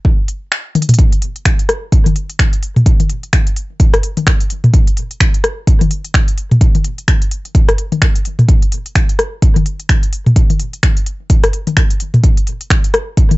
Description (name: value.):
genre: techno.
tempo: 128 BPM.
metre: 4/4.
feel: swing 59% on 16ths.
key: none.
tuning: none.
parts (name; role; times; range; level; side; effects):
electronic kick drum; drums; 0.0-13.3 s; none; -11 LUFS; equal; none.
techno drum kit; drums; 0.3-13.4 s; finger snaps, hi-hat; -19 LUFS; equal; none.
garage drum kit; percussion; 0.8-13.4 s; rim click, toms; -14 LUFS; left 1 dB; none.
room: little or no reverb.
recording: nothing above 7.9 kHz.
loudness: -11 LUFS.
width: side -20 dB against mid.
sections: 1.0-13.4 A section.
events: kick drops out 0.5-1.0; drum fill 0.8; drop 1.0-13.4.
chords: none.